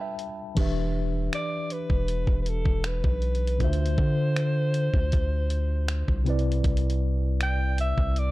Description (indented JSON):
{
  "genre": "contemporary R&B",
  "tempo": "79 BPM",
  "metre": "4/4",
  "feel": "straight",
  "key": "unclear",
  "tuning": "A4 = 441 Hz",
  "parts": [
    { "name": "breathy alto saxophone", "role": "melody", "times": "0.0-8.3 s", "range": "A4 to G5", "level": "-32 LUFS", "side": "equal", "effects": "none" },
    { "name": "mellow tine electric piano", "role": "accompaniment", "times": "0.0-8.3 s", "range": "C3 to B5", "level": "-31 LUFS", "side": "left 1 dB", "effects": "medium stereo tremolo" },
    { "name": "dusty soul sampler-style drum kit", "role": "drums", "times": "0.2-8.3 s", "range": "crash cymbal, finger snaps, hi-hat, kick drum", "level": "-26 LUFS", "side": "equal", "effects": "none" },
    { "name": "long sustained 808-style bass", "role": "bass", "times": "0.6-8.3 s", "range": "E1 to D3", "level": "-26 LUFS", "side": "equal", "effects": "none" },
    { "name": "glassy wavetable pluck", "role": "texture", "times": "7.4-8.3 s", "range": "D5", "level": "-44 LUFS", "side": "right 8 dB", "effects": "none" }
  ],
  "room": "little or no reverb",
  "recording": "dark, warm production",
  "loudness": "-23 LUFS",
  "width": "side -18 dB against mid",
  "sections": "0.6-8.3 A section",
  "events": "break 0.0-0.6; tine electric piano fill 0.0-0.6",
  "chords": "0.0 G7; 0.6 Em7; 3.6 Dm9; 6.3 Cmaj7",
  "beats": "| 0.57 1.33 2.09 2.85 | 3.60 4.37 5.12 5.88 | 6.64 7.40 8.16"
}